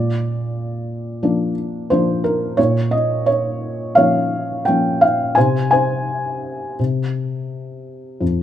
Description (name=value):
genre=classical, lyrical solo piano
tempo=86 BPM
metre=4/4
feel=rubato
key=unclear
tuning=A4 = 439 Hz
part: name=felt-muted upright piano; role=solo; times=0.0-8.4 s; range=F2 to Ab5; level=-16 LUFS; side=equal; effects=none
room=light reverb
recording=close, detailed microphones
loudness=-16 LUFS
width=side -10 dB against mid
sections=0.0-8.4 A section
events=none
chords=0.0 Bb; 2.6 Bbm; 5.4 N.C.